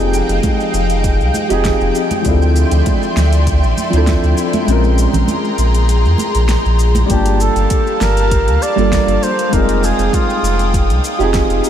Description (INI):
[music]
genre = sunset chillout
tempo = 99 BPM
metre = 4/4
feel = straight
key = G minor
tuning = A4 = 440 Hz
[part]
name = dark grand piano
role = accompaniment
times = 0.0-11.7 s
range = F3 to A5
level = -18 LUFS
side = moving between left 4 dB and right 3 dB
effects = auto-pan, low-pass filter, ping-pong delay
[part]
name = airy breathy pad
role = sustained chords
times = 0.0-11.7 s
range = F3 to E6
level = -21 LUFS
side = left 1 dB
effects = chorus
[part]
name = warm sub bass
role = bass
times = 0.0-11.6 s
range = F1 to F2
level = -14 LUFS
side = equal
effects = none
[part]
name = deep house drum kit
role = drums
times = 0.0-11.7 s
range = hi-hat, shaker, snare drum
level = -26 LUFS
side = equal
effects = studio reverb
[part]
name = twinkling granular texture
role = texture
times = 0.0-7.1 s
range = G5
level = -27 LUFS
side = right 2 dB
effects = built-in reverb
[part]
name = electronic kick drum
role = drums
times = 0.4-11.5 s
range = none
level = -18 LUFS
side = equal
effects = studio reverb
[part]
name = congas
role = percussion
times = 0.4-7.1 s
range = none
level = -26 LUFS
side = right 3 dB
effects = none
[part]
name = mellow flugelhorn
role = melody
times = 7.1-11.0 s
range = F4 to D5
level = -19 LUFS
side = right 1 dB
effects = analog delay
[sound]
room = moderate huge ambient reverb, RT60 8.1 s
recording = dreamy mix soaked in reverb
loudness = -12 LUFS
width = side -10 dB against mid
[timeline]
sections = 0.0-7.1 A section; 7.1-11.7 B section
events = kick drops out 4.7-7.1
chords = 0.0 Fm9; 1.9 Dm9; 4.7 Bbm9; 7.1 Gm9; 9.2 Fm9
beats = 0.43 1.04 1.65 | 2.25 2.86 3.46 4.07 | 4.68 5.28 5.89 6.50 | 7.10 7.71 8.31 8.92 | 9.53 10.13 10.74 11.34